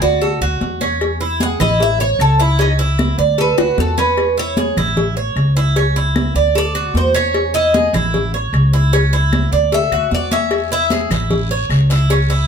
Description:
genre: latin, Cuban son and guajira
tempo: 152 BPM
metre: 4/4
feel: straight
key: unclear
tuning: A4 = 440 Hz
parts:
  - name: Cuban tres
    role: melody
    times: 0.0-11.1 s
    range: D#4 to F#5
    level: -17 LUFS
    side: left 1 dB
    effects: none
  - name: Cuban tres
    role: arpeggios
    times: 0.0-12.5 s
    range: C#4 to D5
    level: -19 LUFS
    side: right 5 dB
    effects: none
  - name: upright bass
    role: bass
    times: 0.0-12.5 s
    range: A1 to E2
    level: -17 LUFS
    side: equal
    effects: none
  - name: congas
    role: percussion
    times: 0.2-12.5 s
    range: none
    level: -23 LUFS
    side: equal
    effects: none
  - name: cowbell and bongos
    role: percussion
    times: 0.2-12.5 s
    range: none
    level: -22 LUFS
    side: left 4 dB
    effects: none
  - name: claves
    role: percussion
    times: 0.4-11.9 s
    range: none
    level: -30 LUFS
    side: left 5 dB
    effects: none
  - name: guiro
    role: percussion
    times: 10.5-12.5 s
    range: none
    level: -31 LUFS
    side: left 7 dB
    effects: none
room: moderate studio reverb, RT60 0.7 s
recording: none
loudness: -13 LUFS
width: side -7 dB against mid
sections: 0.0-12.5 A section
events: Cuban tres solo 0.0-12.5; drum fill 3.6-4.2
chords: 0.2 D; 1.0 E6; 1.8 A; 2.6 C#m; 3.4 D; 4.2 E6; 5.0 A; 5.8 C#m; 6.6 D; 7.3 E6; 8.1 A; 8.9 C#m; 9.7 D; 10.5 E6; 11.3 A

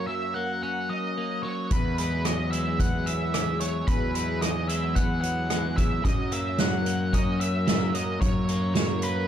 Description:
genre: post-rock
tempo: 111 BPM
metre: 4/4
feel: straight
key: E lydian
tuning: A4 = 440 Hz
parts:
  - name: octave-fuzz lead guitar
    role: melody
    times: 0.0-9.3 s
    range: B4 to F#5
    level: -30 LUFS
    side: right 1 dB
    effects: distortion, tape echo
  - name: lush unison pad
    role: sustained chords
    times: 0.0-9.3 s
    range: F#3 to A#4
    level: -37 LUFS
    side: right 1 dB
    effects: chorus, phaser
  - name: clean electric guitar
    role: arpeggios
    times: 0.0-9.3 s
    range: E2 to C#4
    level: -33 LUFS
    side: left 4 dB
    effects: tape echo
  - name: fuzz fingered electric bass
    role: bass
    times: 1.7-9.3 s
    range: E2 to F#2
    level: -28 LUFS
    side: equal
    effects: overdrive
  - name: soft-mallet drum kit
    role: drums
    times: 1.7-9.2 s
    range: hi-hat, kick drum, rim click, snare drum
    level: -27 LUFS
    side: equal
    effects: none
room: studio ambience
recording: dark, warm production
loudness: -24 LUFS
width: side -10 dB against mid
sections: 0.0-9.3 A section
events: none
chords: 0.0 F#; 1.7 Eadd9; 6.1 F#

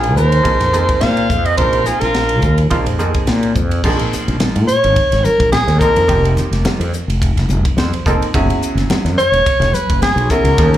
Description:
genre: electric jazz fusion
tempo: 107 BPM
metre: 4/4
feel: swing 55% on 16ths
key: Bb minor from 3.8 s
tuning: A4 = 435 Hz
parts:
  - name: warm soprano saxophone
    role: melody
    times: 0.0-10.8 s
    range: Ab4 to F5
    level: -15 LUFS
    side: equal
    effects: slapback echo, analog delay
  - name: crunchy overdriven guitar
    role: second line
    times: 0.0-2.6 s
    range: F4 to C5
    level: -23 LUFS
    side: right 2 dB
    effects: slapback echo
  - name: bright baby grand piano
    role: accompaniment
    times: 0.0-10.8 s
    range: F3 to C5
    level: -20 LUFS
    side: right 2 dB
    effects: slapback echo
  - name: fretless electric bass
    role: bass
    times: 0.0-10.8 s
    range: Fb1 to Bb2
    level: -16 LUFS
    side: equal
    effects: none
  - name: crisp fusion drum kit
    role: drums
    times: 0.0-10.8 s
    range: crash cymbal, hi-hat, kick drum, ride cymbal, snare drum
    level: -20 LUFS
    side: equal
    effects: none
  - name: congas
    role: percussion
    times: 3.8-10.7 s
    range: none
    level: -23 LUFS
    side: left 1 dB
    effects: slapback echo
room: little or no reverb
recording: live gig heard through the venue's PA, club ambience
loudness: -12 LUFS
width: side -12 dB against mid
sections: 0.0-3.8 A section; 3.8-10.8 B section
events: soprano saxophone solo 3.8-10.8; grand piano fill 7.5-8.3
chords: 0.0 Bb9sus4; 6.1 F9sus4; 8.3 Gb9sus4

